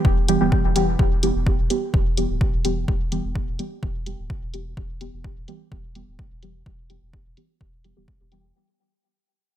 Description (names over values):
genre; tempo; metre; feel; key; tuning
dub techno; 127 BPM; 4/4; straight; E minor; A4 = 441 Hz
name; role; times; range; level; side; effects
soft dub sub bass; bass; 0.0-8.5 s; D1 to E1; -27 LUFS; equal; sidechain pumping
electronic kick drum; drums; 0.0-8.2 s; none; -22 LUFS; equal; overdrive, studio reverb
deep mellow chord stab; stabs; 0.3-8.4 s; E3 to G4; -24 LUFS; right 1 dB; chorus, phaser, dub echo
electronic hi-hat; drums; 0.3-8.4 s; none; -29 LUFS; left 1 dB; low-pass filter on hats, studio reverb
warbly dusty pluck; riff; 0.8 s; E4 to G5; -42 LUFS; right 1 dB; none
room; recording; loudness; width
little or no reverb; none; -20 LUFS; side -11 dB against mid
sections
0.0-8.6 A section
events
fade-out 0.0-8.6; filter sweep on synth stab 0.0-8.6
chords
0.0 Em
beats
0.05 0.52 | 0.99 1.47 1.94 2.41 | 2.88 3.35 3.83 4.30 | 4.77 5.25 5.72 6.19 | 6.66 7.13 7.61 8.08